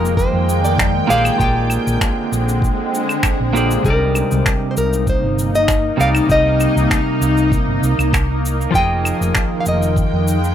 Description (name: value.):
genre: sunset chillout.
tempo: 98 BPM.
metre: 4/4.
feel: straight.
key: C minor.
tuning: A4 = 440 Hz.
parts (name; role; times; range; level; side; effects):
nylon-string guitar; melody; 0.0-10.5 s; Bb4 to G5; -20 LUFS; left 1 dB; digital delay.
clean electric guitar; accompaniment; 0.0-10.4 s; C3 to Eb5; -21 LUFS; right 1 dB; auto-pan, digital delay.
shimmering ambient pad; sustained chords; 0.0-10.5 s; D3 to G5; -20 LUFS; equal; chorus, built-in reverb.
hollow-body short-scale fingered electric bass; bass; 0.0-10.5 s; F1 to F2; -19 LUFS; equal; none.
cabasa, finger snaps and claves; drums; 0.1-10.5 s; none; -22 LUFS; equal; none.
electronic kick drum; drums; 0.2-10.1 s; none; -19 LUFS; equal; none.
room: moderate studio reverb, RT60 0.6 s.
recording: rough home demo mix.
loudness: -14 LUFS.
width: side -10 dB against mid.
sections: 0.0-10.5 A section.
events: none.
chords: 0.0 Fm11; 1.1 Bb13; 3.8 Cm9; 8.7 Fm11.